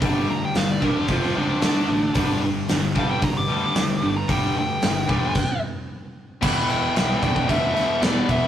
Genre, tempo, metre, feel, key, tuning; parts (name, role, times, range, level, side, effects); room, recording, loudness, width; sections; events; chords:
hard rock; 112 BPM; 4/4; straight; G mixolydian; A4 = 440 Hz
distorted electric guitar; riff; 0.0-8.5 s; E2 to D4; -33 LUFS; right 1 dB
high-gain distorted guitar; riff; 0.0-8.5 s; E2 to D4; -25 LUFS; left 4 dB; distortion
high-gain distorted guitar; riff; 0.0-8.5 s; E2 to D4; -30 LUFS; right 4 dB; distortion
modern bright picked electric bass; bass; 0.0-8.5 s; E1 to D2; -30 LUFS; equal
big rock drum kit; drums; 0.0-8.4 s; crash cymbal, hi-hat, kick drum, snare drum; -24 LUFS; equal
dark smooth lead guitar; melody; 0.3-8.5 s; D4 to D6; -26 LUFS; right 1 dB; overdrive
octave-fuzz lead guitar; second line; 6.4-8.5 s; G3 to G4; -35 LUFS; right 3 dB
moderate studio reverb, RT60 0.5 s; rough rehearsal-room recording, tube saturation, lossy compression artefacts; -19 LUFS; side -10 dB against mid
0.0-6.4 A section; 6.4-8.5 B section
lead electric guitar solo 0.0-6.4; stop 5.4-6.4
0.0 G5; 1.1 F5; 1.6 D5; 2.2 G5; 5.4 N.C.; 6.4 Em